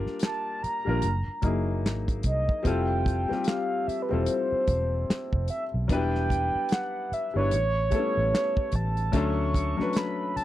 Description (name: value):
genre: R&B, neo-soul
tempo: 74 BPM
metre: 4/4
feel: swing 59% on 16ths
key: unclear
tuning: A4 = 440 Hz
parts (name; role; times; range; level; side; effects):
- clear grand piano; accompaniment; 0.0-10.4 s; F#3 to B4; -30 LUFS; left 4 dB; none
- vintage muted fingered electric bass; bass; 0.1-10.4 s; E1 to D2; -28 LUFS; right 1 dB; none
- damped 70s drum kit; drums; 0.1-10.4 s; handclaps, hi-hat, kick drum, snare drum; -27 LUFS; equal; none
- mellow horn-like synth lead; melody; 0.2-10.4 s; B4 to C#6; -29 LUFS; right 1 dB; chorus, slapback echo
room: little or no reverb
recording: dry, close 1970s-style studio recording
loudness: -24 LUFS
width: side -14 dB against mid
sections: 0.0-10.4 A section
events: none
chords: 0.0 Gm7; 1.0 F#13; 2.6 Fmaj9; 5.9 Em7; 7.5 A7; 9.1 Dmaj7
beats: 0.21 1.02 1.84 | 2.65 3.46 4.27 5.08 | 5.89 6.70 7.51 8.32 | 9.13 9.94